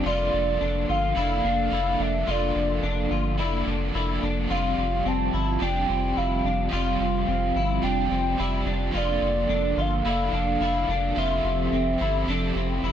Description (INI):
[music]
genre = dream pop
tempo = 108 BPM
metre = 4/4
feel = straight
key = unclear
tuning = A4 = 440 Hz
[part]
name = overdriven electric guitar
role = accompaniment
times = 0.0-12.9 s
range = F3 to D5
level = -31 LUFS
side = right 4 dB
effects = tremolo, wide subtle chorus
[part]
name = hollow soft pad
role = sustained chords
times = 0.0-12.9 s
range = F3 to E5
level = -30 LUFS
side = right 2 dB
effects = chorus
[part]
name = electric guitar at the edge of break-up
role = arpeggios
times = 0.0-12.9 s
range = C4 to F4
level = -31 LUFS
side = left 7 dB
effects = ensemble chorus, ping-pong delay
[part]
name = warm sub bass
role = bass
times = 0.0-12.9 s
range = F1 to G1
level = -28 LUFS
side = equal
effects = none
[part]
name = warbly nostalgic lead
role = melody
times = 0.1-12.8 s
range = D5 to A5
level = -27 LUFS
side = right 1 dB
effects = chorus, ping-pong delay
[sound]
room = light reverb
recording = none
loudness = -22 LUFS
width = side -9 dB against mid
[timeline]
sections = 0.0-12.9 A section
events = none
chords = 0.1 Bbmaj7/F; 4.5 G7sus4/F; 8.9 Bbmaj7/F; 11.2 Fmaj7